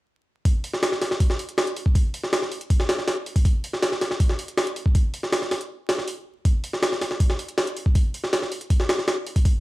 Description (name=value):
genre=drum and bass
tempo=160 BPM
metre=4/4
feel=straight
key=none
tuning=none
part: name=jungle sampler-style drum kit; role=drums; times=0.5-9.5 s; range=hi-hat, kick drum, snare drum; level=-21 LUFS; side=equal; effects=overdrive, studio reverb
room=light reverb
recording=dry, gritty hardware recording, transformer saturation, vinyl crackle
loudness=-21 LUFS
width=side -18 dB against mid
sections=0.5-9.6 A section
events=none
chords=none